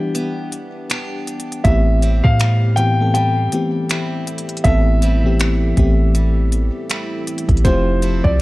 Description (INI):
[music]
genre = contemporary R&B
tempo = 80 BPM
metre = 4/4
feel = swing 58% on 16ths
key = A minor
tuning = A4 = 440 Hz
[part]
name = warm concert grand piano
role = melody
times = 0.0-8.4 s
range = C5 to G5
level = -23 LUFS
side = equal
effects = tape echo
[part]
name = FM electric piano with soft pad layer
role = accompaniment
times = 0.0-8.4 s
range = E3 to A4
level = -21 LUFS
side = left 2 dB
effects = chorus, tremolo
[part]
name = picked steel-string acoustic guitar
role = arpeggios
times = 0.0-8.4 s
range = A2 to A4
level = -29 LUFS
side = right 3 dB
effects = none
[part]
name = smooth R&B drum kit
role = drums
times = 0.2-8.4 s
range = finger snaps, hi-hat, kick drum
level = -19 LUFS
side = equal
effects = overdrive
[part]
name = soft 808-style bass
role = bass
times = 1.6-8.4 s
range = F1 to A2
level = -16 LUFS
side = equal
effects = none
[sound]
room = digital ambience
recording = dry, gritty hardware recording, cassette tape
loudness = -14 LUFS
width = side -19 dB against mid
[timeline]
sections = 0.0-8.4 A section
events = break 0.0-1.6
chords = 0.0 Em7; 1.6 Am7; 7.6 Fmaj7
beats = 0.15 0.90 | 1.65 2.40 3.15 3.90 | 4.65 5.40 6.15 6.90 | 7.65 8.40